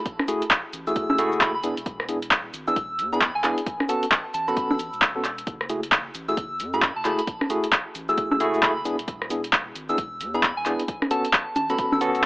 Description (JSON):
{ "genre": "UK garage, two-step garage", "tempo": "133 BPM", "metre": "4/4", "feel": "swing 61% on 16ths", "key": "F# minor", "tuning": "A4 = 440 Hz", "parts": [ { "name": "soft synth bell", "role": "melody", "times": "0.0-12.3 s", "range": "G#5 to E6", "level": "-28 LUFS", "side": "equal", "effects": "chorus, phaser, tape echo" }, { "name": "electronic kick drum", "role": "drums", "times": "0.1-12.3 s", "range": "none", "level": "-32 LUFS", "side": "equal", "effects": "none" }, { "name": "punchy analog drum machine", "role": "drums", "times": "0.1-12.2 s", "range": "congas, handclaps, hi-hat, rim click, shaker", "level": "-22 LUFS", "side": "equal", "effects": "none" }, { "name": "bright tine electric piano", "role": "stabs", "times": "0.3-12.2 s", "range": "A3 to A4", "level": "-26 LUFS", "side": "equal", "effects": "medium stereo tremolo" }, { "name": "saturated sub bass", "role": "bass", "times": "0.7-12.3 s", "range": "E1 to F#2", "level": "-41 LUFS", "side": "equal", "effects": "none" } ], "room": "light reverb", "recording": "dry, gritty hardware recording, AM radio sound", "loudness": "-21 LUFS", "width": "side -22 dB against mid", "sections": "0.0-12.3 A section", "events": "none", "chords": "0.0 F#m9; 1.6 E7; 3.7 A69; 5.5 F#m9; 8.9 E7; 10.9 A69" }